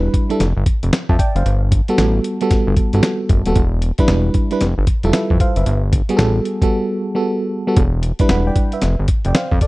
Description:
R&B, new jack swing; 114 BPM; 4/4; swing 63% on 16ths; G major; A4 = 440 Hz
FM electric piano with auto-pan; accompaniment; 0.0-9.7 s; G3 to B5; -19 LUFS; right 1 dB
fat analog bass; bass; 0.0-9.6 s; Eb1 to F2; -17 LUFS; equal
dusty soul sampler-style drum kit; drums; 0.1-9.7 s; hi-hat, kick drum, snare drum; -16 LUFS; equal
digital ambience; dry, close 1970s-style studio recording; -14 LUFS; side -21 dB against mid
0.0-9.7 A section
break 6.7-7.8
0.4 Fsus2; 1.5 Gmaj9; 3.6 Em7; 4.6 Fmaj9; 5.7 Gmaj9; 7.8 Em7; 8.8 Fsus2

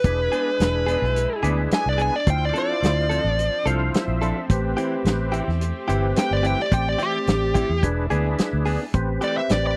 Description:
straight-eighth soul blues; 108 BPM; 4/4; straight; A minor; A4 = 441 Hz
smooth overdriven lead guitar; melody; 0.0-9.8 s; G4 to G#5; -25 LUFS; equal
percussive tonewheel organ; accompaniment; 0.0-9.8 s; C4 to F5; -30 LUFS; equal; slow rotary speaker, overdrive, chorus vibrato
warm studio string section; sustained chords; 0.0-8.9 s; F3 to G4; -36 LUFS; equal
vintage muted fingered electric bass; bass; 0.0-9.8 s; E1 to E2; -26 LUFS; equal
warm soul drum kit; drums; 0.0-9.6 s; hi-hat, kick drum, snare drum; -25 LUFS; equal
direct-recorded clean electric guitar; stabs; 0.3-9.4 s; E3 to A4; -32 LUFS; equal; spring reverb
little or no reverb; dry, close 1970s-style studio recording; -22 LUFS; mono
0.0-8.9 A section
lead electric guitar solo 0.0-8.9; tonewheel organ fill 3.4-4.5
0.0 E7; 2.3 Dm7; 4.5 Am7; 7.8 E7; 8.9 Am7

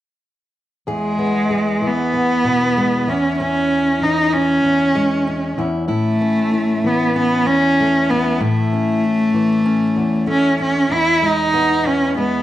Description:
folk; 96 BPM; 4/4; straight; E major; A4 = 440 Hz
rich cello; melody; 0.9-12.4 s; G#3 to E4; -16 LUFS; equal; slapback echo
fingerpicked steel-string acoustic guitar; accompaniment; 0.9-12.4 s; E2 to G#4; -21 LUFS; left 1 dB
moderate spring reverb, RT60 1.3 s; -15 LUFS; side -13 dB against mid
0.9-10.9 A section; 10.9-12.4 B section
0.9 E; 3.1 C#m/E; 5.9 A; 10.9 E

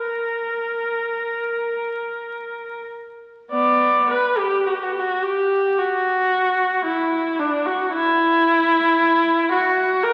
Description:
classical, free, expressive piece for unaccompanied viola; 38-58 BPM; 4/4; rubato; A4 = 441 Hz
rich viola; solo; 0.0-10.1 s; B3 to D5; -20 LUFS; equal
wet concert hall reverb, RT60 2.4 s; very old 78 rpm record, vinyl crackle; -20 LUFS; mono
0.0-3.5 A section; 3.5-10.1 B section

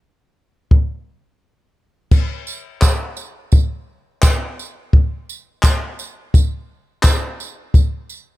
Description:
pop; 85 BPM; 4/4; swing 60% on 16ths
compact cocktail drum kit; drums; 0.7-7.9 s; crash cymbal, handclaps, kick drum; -13 LUFS; equal
tambourine; percussion; 2.1-8.3 s; -28 LUFS; right 8 dB
little or no reverb; close, detailed microphones; -15 LUFS; side -18 dB against mid
0.0-2.1 A section; 2.1-8.4 B section

